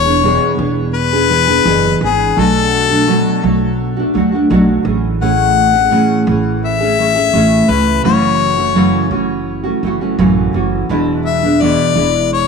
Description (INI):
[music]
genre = acoustic pop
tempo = 84 BPM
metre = 4/4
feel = straight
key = A major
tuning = A4 = 440 Hz
[part]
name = clear harmonica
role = melody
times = 0.0-12.5 s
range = G#4 to F#5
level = -14 LUFS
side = left 10 dB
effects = tape echo
[part]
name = nylon-string guitar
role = accompaniment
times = 0.0-12.5 s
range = E2 to G#4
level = -14 LUFS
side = right 2 dB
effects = double-tracked left and right
[part]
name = upright bass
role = bass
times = 0.0-12.5 s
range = E1 to D2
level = -20 LUFS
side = right 2 dB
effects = none
[sound]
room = moderate plate reverb, RT60 2.8 s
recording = none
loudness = -11 LUFS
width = side -5 dB against mid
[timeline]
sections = 0.0-12.5 A section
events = none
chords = 0.0 E7; 2.4 Bm7; 4.8 Amaj7; 8.0 F#m7; 10.9 E7